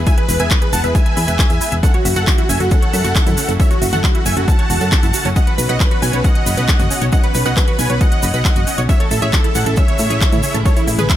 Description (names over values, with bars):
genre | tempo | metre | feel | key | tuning
uplifting trance | 136 BPM | 4/4 | straight | unclear | A4 = 440 Hz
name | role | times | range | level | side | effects
lush unison pad | sustained chords | 0.0-11.2 s | B2 to B4 | -26 LUFS | equal | chorus, sidechain pumping
solid FM bass | bass | 0.0-11.1 s | E1 to A2 | -19 LUFS | equal | sidechain pumping
dense compressed supersaw | melody | 0.1-11.2 s | E4 to A5 | -22 LUFS | equal | sidechain pumping, dub echo
wide unison pluck | second line | 0.1-11.2 s | E4 to A5 | -28 LUFS | right 1 dB | vintage 12-bit sampler grit, sidechain pumping, dub echo
tight sequenced synth | arpeggios | 0.1-11.1 s | C#4 to B5 | -26 LUFS | right 4 dB | chorus, sidechain pumping, dub echo
electronic kick drum | drums | 0.1-11.2 s | none | -15 LUFS | equal | studio reverb
techno drum kit | drums | 0.1-11.2 s | handclaps, hi-hat, toms | -22 LUFS | left 1 dB | studio reverb
egg shaker | percussion | 0.1-11.2 s | none | -27 LUFS | right 2 dB | none
room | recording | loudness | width
little or no reverb | none | -12 LUFS | side -12 dB against mid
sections
0.0-11.2 A section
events
none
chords
0.0 E; 1.8 F#m7; 5.4 Bsus2; 8.9 Amaj7